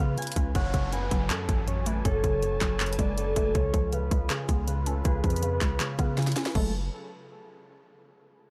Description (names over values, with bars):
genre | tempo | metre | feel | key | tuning
hip hop, trap | 160 BPM | 4/4 | half-time | F# harmonic minor | A4 = 436 Hz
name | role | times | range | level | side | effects
concert harp | melody | 0.0-6.7 s | G#4 to A5 | -36 LUFS | equal | low-pass filter, delay
soft octave-layered synth lead | second line | 0.0-6.7 s | G#4 to D5 | -40 LUFS | equal | chorus, delay
hollow square pluck | accompaniment | 0.0-6.7 s | F#2 to C#4 | -36 LUFS | equal | chorus, low-pass filter
sweeping resonant pad | sustained chords | 0.0-6.7 s | C#3 to A5 | -43 LUFS | equal | chorus, low-pass filter
long sustained 808-style bass | bass | 0.0-6.9 s | E#1 to C#3 | -32 LUFS | equal | none
trap drum kit | drums | 0.2-6.6 s | crash cymbal, handclaps, hi-hat, kick drum, snare drum | -31 LUFS | equal | overdrive
downlifter | sound effects | 0.6-3.6 s | none | -45 LUFS | equal | none
room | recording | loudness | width
little or no reverb | lossy compression artefacts | -27 LUFS | mono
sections
0.6-6.6 A section; 6.6-8.1 B section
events
filter sweep 0.6-6.6; drum fill 6.2-6.6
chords
0.0 C#7; 0.6 F#madd9; 3.6 C#7; 6.6 F#madd9